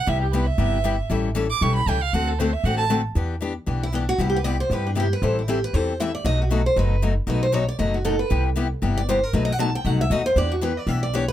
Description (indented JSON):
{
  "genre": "acoustic string swing (jazz manouche)",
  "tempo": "233 BPM",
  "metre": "4/4",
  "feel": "swing 55% on 8ths",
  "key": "E minor from 3.2 s",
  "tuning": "A4 = 440 Hz",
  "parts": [
    { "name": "warm violin", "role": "second line", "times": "0.0-2.8 s", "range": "G4 to D6", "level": "-25 LUFS", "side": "right 7 dB", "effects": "none" },
    { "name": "picked steel-string acoustic guitar", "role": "accompaniment", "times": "0.1-11.2 s", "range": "B2 to A4", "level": "-25 LUFS", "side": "left 5 dB", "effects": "none" },
    { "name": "upright bass", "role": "bass", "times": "0.1-11.3 s", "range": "F#1 to G2", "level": "-23 LUFS", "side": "equal", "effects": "none" },
    { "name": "picked steel-string acoustic guitar", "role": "melody", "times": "3.8-11.3 s", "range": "D4 to A5", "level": "-25 LUFS", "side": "right 1 dB", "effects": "none" }
  ],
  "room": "little or no reverb",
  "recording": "close, detailed microphones",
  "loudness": "-20 LUFS",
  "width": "side -12 dB against mid",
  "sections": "0.0-3.2 A section; 3.2-11.3 A section",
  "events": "violin solo 0.0-3.2; steel-string acoustic guitar solo 3.2-11.3",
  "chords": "0.1 Cmaj7; 1.1 A7; 2.1 D7; 3.2 Em7; 4.2 Cmaj7; 5.2 Am7; 6.3 B7; 8.3 Cmaj7; 9.3 B7; 10.4 Em7"
}